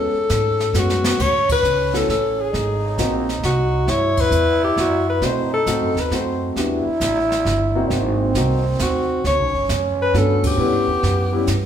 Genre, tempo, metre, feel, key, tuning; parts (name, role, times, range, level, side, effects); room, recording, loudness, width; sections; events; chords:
jazz, small-group swing and bop; 134 BPM; 3/4; swing 67% on 8ths; A4 = 439 Hz
warm alto saxophone; melody; 0.0-6.5, 8.8-11.7 s; F#4 to C#5; -20 LUFS; left 3 dB
growling trombone; second line; 0.0-11.7 s; B3 to E4; -24 LUFS; right 3 dB
warm grand piano; accompaniment; 0.0-11.5 s; D3 to F#4; -24 LUFS; left 2 dB
upright bass; bass; 0.0-11.7 s; G1 to B2; -23 LUFS; right 1 dB
jazz brush drum kit; drums; 0.3-11.7 s; brushed snare drum, crash cymbal, hi-hat, kick drum, ride cymbal, snare drum; -27 LUFS; right 1 dB
wet large studio reverb, RT60 1.4 s; band playing live in one room; -16 LUFS; side -9 dB against mid
0.0-1.2 A section; 1.2-11.7 B section
drum fill 0.7-1.2; band accent 1.4, 4.1, 10.4
0.0 Amaj13; 1.2 Dmaj7(no3); 2.5 G#9; 3.9 Gmaj7; 5.2 B7b9; 6.6 Em7; 7.9 G#9; 9.2 Gmaj9; 10.6 A9